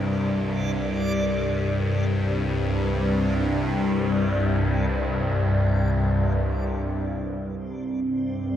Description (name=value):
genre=dark ambient drone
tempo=free time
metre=none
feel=none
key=unclear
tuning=A4 = 439 Hz
part: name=bowed-like drone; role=drone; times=0.0-8.6 s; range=C2 to G2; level=-22 LUFS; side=left 1 dB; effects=built-in reverb, phaser
part: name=backwards swelling texture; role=texture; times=0.0-8.6 s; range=C5 to D5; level=-36 LUFS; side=right 3 dB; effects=built-in reverb
part: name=deep dark ambient pad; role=sustained chords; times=7.6-8.6 s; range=C4 to G4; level=-27 LUFS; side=right 2 dB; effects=chorus, built-in reverb
room=wet spring reverb, RT60 2.4 s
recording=none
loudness=-22 LUFS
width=side -10 dB against mid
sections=0.0-7.2 A section; 7.2-8.6 B section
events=fade-out on synth texture 0.0-7.2; filter sweep on synth drone 7.2-8.6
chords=0.0 C5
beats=free time